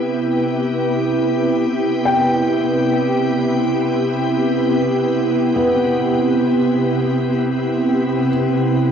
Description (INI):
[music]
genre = ambient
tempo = free time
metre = none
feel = none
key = C major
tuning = A4 = 440 Hz
[part]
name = soft additive organ-like pad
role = sustained chords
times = 0.0-8.9 s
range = C3 to G4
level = -16 LUFS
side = right 1 dB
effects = ensemble chorus, built-in reverb, shimmer reverb
[part]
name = felt-muted upright piano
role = arpeggios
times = 0.0-8.9 s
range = B3 to G5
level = -22 LUFS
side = equal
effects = tape echo, shimmer reverb
[sound]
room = wet concert hall reverb, RT60 2.3 s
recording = worn, warbling old tape, cassette tape, warbly pitch drift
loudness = -15 LUFS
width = side -7 dB against mid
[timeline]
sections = 0.0-8.9 A section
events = none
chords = 0.0 Cmaj7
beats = free time